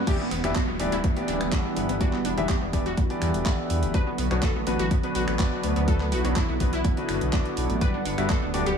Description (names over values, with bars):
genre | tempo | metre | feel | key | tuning
progressive house | 124 BPM | 4/4 | straight | unclear | A4 = 440 Hz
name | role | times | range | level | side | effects
riser and downlifter | sound effects | 0.0-3.9 s | none | -36 LUFS | right 2 dB | none
lush unison pad | sustained chords | 0.1-8.8 s | D3 to F#5 | -31 LUFS | right 1 dB | chorus, sidechain pumping
wide unison pluck | arpeggios | 0.1-8.7 s | B3 to B4 | -31 LUFS | right 1 dB | sidechain pumping, digital delay
clear baby grand piano | stabs | 0.1-8.7 s | G2 to F#5 | -30 LUFS | left 3 dB | sidechain pumping, digital delay
electronic kick drum | drums | 0.1-8.4 s | none | -24 LUFS | equal | none
house drum kit | drums | 0.1-8.8 s | crash cymbal, finger snaps, handclaps, hi-hat | -34 LUFS | right 2 dB | high-pass filter on hats, high-pass filter on snare, high-pass filter on cymbals, high-pass filter on room
dark detuned saw bass | bass | 0.3-8.8 s | D1 to E2 | -28 LUFS | equal | tube saturation, sidechain pumping
room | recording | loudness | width
light reverb | none | -22 LUFS | side -7 dB against mid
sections
0.1-8.8 A section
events
drop 0.1-8.8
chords
0.1 Em7; 3.9 Bm; 7.8 Gmaj7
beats
| 0.07 0.56 1.04 1.52 | 2.01 2.49 2.97 3.46 | 3.94 4.43 4.91 5.39 | 5.88 6.36 6.84 7.33 | 7.81 8.30